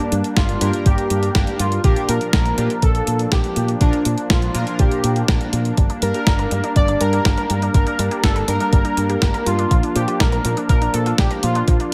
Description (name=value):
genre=italo disco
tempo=122 BPM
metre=4/4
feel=straight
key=G minor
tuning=A4 = 441 Hz
part: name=analog synth brass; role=melody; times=0.0-11.9 s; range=D4 to D5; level=-25 LUFS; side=equal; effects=chorus, delay
part: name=warm analog pad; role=sustained chords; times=0.0-11.9 s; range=F3 to D4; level=-28 LUFS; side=equal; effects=chorus
part: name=chorused polysynth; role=stabs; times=0.0-5.7 s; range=G2 to Bb4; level=-30 LUFS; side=equal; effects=delay
part: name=clean 12-bit digital drum machine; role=drums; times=0.0-11.9 s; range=hi-hat, snare drum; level=-26 LUFS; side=equal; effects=gated reverb
part: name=fingered electric bass with an envelope filter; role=bass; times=0.1-11.8 s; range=G1 to Bb2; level=-24 LUFS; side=equal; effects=none
part: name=electronic kick drum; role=drums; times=0.4-11.8 s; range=none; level=-19 LUFS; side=equal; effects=none
part: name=unison pluck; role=arpeggios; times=5.8-11.9 s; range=F3 to Bb4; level=-31 LUFS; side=equal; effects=cassette tape, delay
room=light reverb, digital ambience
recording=none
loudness=-18 LUFS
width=mono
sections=0.0-11.9 A section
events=none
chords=0.0 Gm; 1.8 Bb; 5.8 Gm; 9.7 Bb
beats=0.37 0.86 1.35 | 1.84 2.33 2.83 3.32 | 3.81 4.30 4.79 5.28 | 5.78 6.27 6.76 7.25 | 7.74 8.23 8.73 9.22 | 9.71 10.20 10.69 11.19 | 11.68